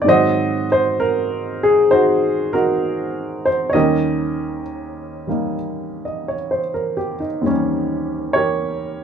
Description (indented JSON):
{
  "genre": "solo jazz",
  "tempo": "65 BPM",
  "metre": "4/4",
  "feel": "swing 69% on 8ths",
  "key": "Eb mixolydian",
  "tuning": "A4 = 440 Hz",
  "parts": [
    { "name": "warm upright piano", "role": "solo", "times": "0.0-9.0 s", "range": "Eb2 to Eb5", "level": "-17 LUFS", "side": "equal", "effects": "none" }
  ],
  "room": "moderate studio reverb, RT60 0.5 s",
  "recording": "band playing live in one room",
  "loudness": "-17 LUFS",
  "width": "side -7 dB against mid",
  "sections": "0.0-9.0 A section",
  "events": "none",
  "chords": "0.1 Ab7; 3.7 Eb7",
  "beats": "| 0.06 0.98 1.90 2.82 | 3.74 4.66 5.58 6.50 | 7.42 8.34"
}